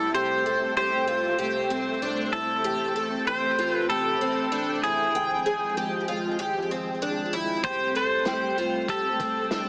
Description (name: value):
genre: dream pop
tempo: 96 BPM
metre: 4/4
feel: straight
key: unclear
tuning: A4 = 440 Hz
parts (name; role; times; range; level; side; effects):
- pedal steel guitar; melody; 0.0-9.7 s; Ab4 to C5; -28 LUFS; equal; digital delay
- soft string machine; sustained chords; 0.0-9.7 s; C3 to G5; -35 LUFS; equal; phaser, ensemble chorus
- picked twelve-string acoustic guitar; arpeggios; 0.0-9.7 s; C4 to G5; -32 LUFS; equal; analog chorus, digital delay
- round analog bass; bass; 0.0-9.7 s; Ab1 to C2; -49 LUFS; equal; none
- synth chime; texture; 0.0-9.7 s; G5 to C6; -42 LUFS; equal; ensemble chorus, digital delay
- vintage drum kit; drums; 7.6-9.7 s; hi-hat, kick drum, snare drum; -35 LUFS; equal; none
room: moderate huge ambient reverb, RT60 7.2 s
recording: heavily compressed radio sound, small speaker sound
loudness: -26 LUFS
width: mono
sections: 0.0-9.7 A section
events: none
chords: 0.0 C6; 2.6 Am7; 5.1 Fmadd9/Ab; 7.6 C5